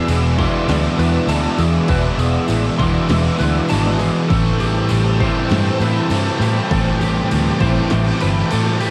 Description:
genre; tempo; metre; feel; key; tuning
rock, shoegaze and dream pop; 100 BPM; 4/4; straight; A minor; A4 = 444 Hz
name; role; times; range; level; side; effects
analog string pad; sustained chords; 0.0-8.9 s; C4 to E6; -29 LUFS; equal; ensemble chorus, cassette tape
direct-recorded clean electric guitar; arpeggios; 0.0-8.9 s; G4 to C6; -29 LUFS; equal; ensemble chorus, cassette tape, tape echo
crunchy overdriven guitar; riff; 0.0-8.9 s; A2 to D4; -26 LUFS; equal; reverse reverb, cassette tape
distorted electric guitar; riff; 0.0-8.9 s; E2 to A3; -26 LUFS; equal; overdrive, cassette tape
thick fuzz guitar; riff; 0.0-8.9 s; E2 to E4; -24 LUFS; equal; distortion, ensemble chorus, cassette tape
vintage muted fingered electric bass; bass; 0.1-8.9 s; E1 to A2; -21 LUFS; equal; none
punchy analog drum machine; drums; 0.1-8.9 s; crash cymbal, kick drum, snare drum; -27 LUFS; equal; overdrive
tambourine; percussion; 0.1-8.9 s; none; -41 LUFS; equal; none
room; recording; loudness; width
light reverb; home recording on cassette; -17 LUFS; mono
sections
0.0-8.9 A section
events
none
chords
0.0 E7; 4.3 Am7

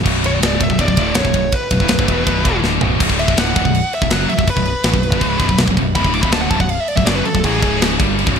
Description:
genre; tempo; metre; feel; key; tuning
heavy metal; 163 BPM; 4/4; straight; B minor; A4 = 440 Hz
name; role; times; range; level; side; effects
scooped high-gain guitar; riff; 0.0-8.4 s; B1 to A3; -18 LUFS; equal; distortion
growling picked electric bass; bass; 0.0-8.4 s; B0 to A1; -22 LUFS; equal; overdrive
tight metal drum kit; drums; 0.1-8.4 s; crash cymbal, kick drum, ride cymbal, snare drum, toms; -18 LUFS; equal; gated reverb
high-gain lead guitar; melody; 0.3-7.8 s; G#4 to D6; -21 LUFS; equal; distortion
room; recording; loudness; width
light reverb, small room ambience; bright 1980s-style digital production; -13 LUFS; side -7 dB against mid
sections
0.0-3.0 A section; 3.0-8.4 B section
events
drum fill 2.6-3.0; lead electric guitar solo 3.0-8.4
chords
0.0 Bm; 7.6 C#5

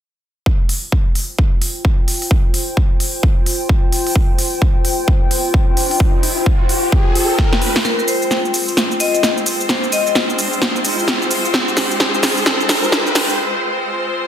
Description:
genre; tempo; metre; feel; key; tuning
bass house; 130 BPM; 4/4; swing 61% on 16ths; F minor; A4 = 440 Hz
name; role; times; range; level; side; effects
electronic kick drum; drums; 0.5-7.5 s; none; -14 LUFS; equal; none
warbly tape-like pad; texture; 1.7-13.4 s; F4 to G5; -23 LUFS; left 1 dB; chorus, built-in reverb, sidechain pumping
big-room dance drum kit; drums; 0.7-13.4 s; hi-hat, shaker, snare drum; -17 LUFS; equal; none
riser; sound effects; 5.2-13.4 s; none; -25 LUFS; equal; none
vibraphone with hard mallets; melody; 7.8-10.1 s; Bb4 to Eb5; -20 LUFS; left 4 dB; none
bright symphonic string section; sustained chords; 7.8-14.3 s; Ab3 to C5; -22 LUFS; equal; sidechain pumping
room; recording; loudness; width
moderate digital room reverb, RT60 1.1 s; dense, heavily limited modern master, high-pass filter; -14 LUFS; side -10 dB against mid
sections
0.5-7.8 A section; 7.8-14.3 B section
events
fade-in on ambient pad 0.5-7.8; riser 5.2-7.8, 7.8-13.4; drum fill 7.4-7.8, 7.8-13.4; build-up 7.8-14.3; break 13.4-14.3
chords
0.5 F5; 7.8 Fm

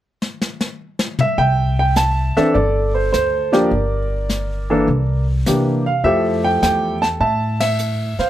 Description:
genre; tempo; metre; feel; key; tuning
jazz piano trio; 103 BPM; 4/4; swing 69% on 8ths; C major; A4 = 440 Hz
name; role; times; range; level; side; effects
jazz brush drum kit; drums; 0.2-8.3 s; brushed snare drum, hi-hat, ride cymbal, snare drum, toms; -24 LUFS; left 2 dB; none
clear grand piano; melody; 1.2-8.3 s; E3 to A5; -17 LUFS; right 1 dB; plate reverb
upright bass; bass; 1.4-8.2 s; G1 to C3; -20 LUFS; equal; none
room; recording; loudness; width
light reverb; none; -16 LUFS; side -12 dB against mid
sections
0.0-1.4 A section; 1.4-8.3 B section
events
drum fill 0.2-1.4; band accent 7.5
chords
0.0 N.C.; 1.4 C69; 3.7 Gm; 4.9 C9; 6.0 Fmaj9

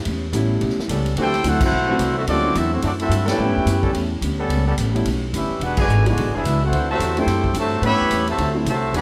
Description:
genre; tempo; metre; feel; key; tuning
jazz, big band swing; 216 BPM; 4/4; swing 60% on 8ths; unclear; A4 = 440 Hz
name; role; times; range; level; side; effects
upright bass; bass; 0.0-9.0 s; E1 to A2; -24 LUFS; equal; none
vintage hollow-body jazz guitar; accompaniment; 0.1-9.0 s; A2 to F#4; -32 LUFS; equal; none
swinging big-band drum kit; drums; 0.1-9.0 s; crash cymbal, hi-hat, kick drum, ride cymbal, snare drum; -31 LUFS; equal; none
warm concert grand piano; accompaniment; 0.3-8.7 s; F#3 to F#4; -28 LUFS; equal; none
brilliant trombone section; sustained chords; 0.9-9.0 s; E3 to C5; -31 LUFS; equal; none
mellow trumpet section; melody; 1.2-9.0 s; A3 to B5; -25 LUFS; equal; none
clear trombone section; second line; 1.2-9.0 s; B2 to G4; -28 LUFS; equal; none
room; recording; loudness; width
moderate large studio reverb, RT60 1.3 s; none; -20 LUFS; mono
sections
0.0-9.0 A section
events
band accent 1.6, 3.2, 5.7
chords
0.0 A9; 1.2 D9; 3.4 A9; 5.6 E9; 6.7 D9; 7.8 A9; 8.4 D9

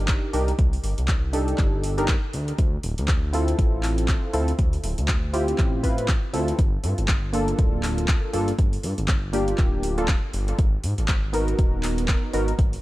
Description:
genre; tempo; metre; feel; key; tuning
deep house; 120 BPM; 4/4; swing 58% on 16ths; G minor; A4 = 439 Hz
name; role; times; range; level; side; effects
warm analog keys; stabs; 0.0-12.5 s; Bb3 to B4; -26 LUFS; equal; chorus, sidechain pumping, tape echo
smooth gliding synth bass; bass; 0.0-12.8 s; D1 to Ab2; -26 LUFS; equal; sidechain pumping
deep house drum kit; drums; 0.1-12.8 s; handclaps, hi-hat; -31 LUFS; equal; overdrive, small room ambience
electronic kick drum; drums; 0.1-12.7 s; none; -22 LUFS; equal; overdrive, small room ambience
room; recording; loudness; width
little or no reverb; none; -20 LUFS; side -17 dB against mid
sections
0.0-12.8 A section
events
none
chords
0.0 Cm9; 2.3 Dm9; 6.6 Gm9; 10.6 Abm9

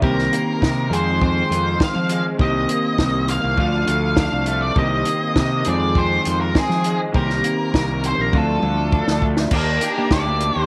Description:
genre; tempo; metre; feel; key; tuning
indie rock; 101 BPM; 4/4; straight; C minor; A4 = 441 Hz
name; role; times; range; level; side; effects
octave-fuzz lead guitar; melody; 0.0-10.7 s; Ab4 to F5; -25 LUFS; equal; distortion, slapback echo
electric guitar through a small old amp; riff; 0.0-10.7 s; F2 to G4; -29 LUFS; equal; ensemble chorus
mellow electric guitar; riff; 0.0-10.5 s; Eb3 to Ab4; -26 LUFS; equal; analog chorus, slapback echo
fuzz fingered electric bass; bass; 0.0-10.7 s; Bb1 to F3; -25 LUFS; equal; overdrive
compact cocktail drum kit; drums; 0.0-10.5 s; crash cymbal, hi-hat, kick drum, snare drum, toms; -23 LUFS; equal; none
room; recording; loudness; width
small room reverb; none; -19 LUFS; mono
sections
0.0-9.5 A section; 9.5-10.7 B section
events
drum fill 8.3-9.5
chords
0.0 Cm7; 0.9 Fm7; 2.4 Cm7; 3.6 Dm; 4.8 Cm7; 5.7 Fm7; 7.1 Cm7; 8.3 Dm; 9.5 Ebmaj7

